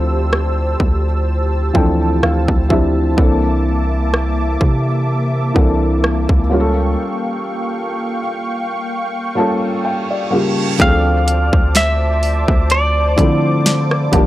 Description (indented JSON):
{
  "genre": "contemporary R&B",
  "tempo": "63 BPM",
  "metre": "4/4",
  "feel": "swing 54% on 16ths",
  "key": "D minor",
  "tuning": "A4 = 440 Hz",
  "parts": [
    { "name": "felt-muted upright piano", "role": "accompaniment", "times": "0.0-14.3 s", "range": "C#3 to A5", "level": "-19 LUFS", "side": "equal", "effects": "none" },
    { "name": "warm analog pad", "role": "sustained chords", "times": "0.0-14.3 s", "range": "Bb3 to E6", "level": "-23 LUFS", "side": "equal", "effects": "chorus" },
    { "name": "long sustained 808-style bass", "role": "bass", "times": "0.0-14.3 s", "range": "G1 to D3", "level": "-17 LUFS", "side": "equal", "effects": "none" },
    { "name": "trap drum kit", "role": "drums", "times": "0.3-14.3 s", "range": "hi-hat, kick drum, rim click, snare drum", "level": "-15 LUFS", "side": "equal", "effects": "none" },
    { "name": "reverse cymbal", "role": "sound effects", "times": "9.7-10.8 s", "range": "none", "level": "-28 LUFS", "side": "right 6 dB", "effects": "none" },
    { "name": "direct-recorded clean electric guitar", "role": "melody", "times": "10.8-14.3 s", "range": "D5 to F5", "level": "-18 LUFS", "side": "equal", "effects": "tape echo" },
    { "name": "worn celesta", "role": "texture", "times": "10.8-14.3 s", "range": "G5 to A5", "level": "-29 LUFS", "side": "equal", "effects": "none" }
  ],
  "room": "little or no reverb",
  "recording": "dry, gritty hardware recording",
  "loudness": "-14 LUFS",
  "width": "side -15 dB against mid",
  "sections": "0.0-10.8 A section; 10.8-14.3 B section",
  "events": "felt piano fill 1.3-3.2, 8.9-10.8; break 7.0-10.8; reverse cymbal 9.7-10.8",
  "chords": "0.0 Dm11; 3.2 C13; 6.5 A7b9b13/C#; 10.8 Dm7"
}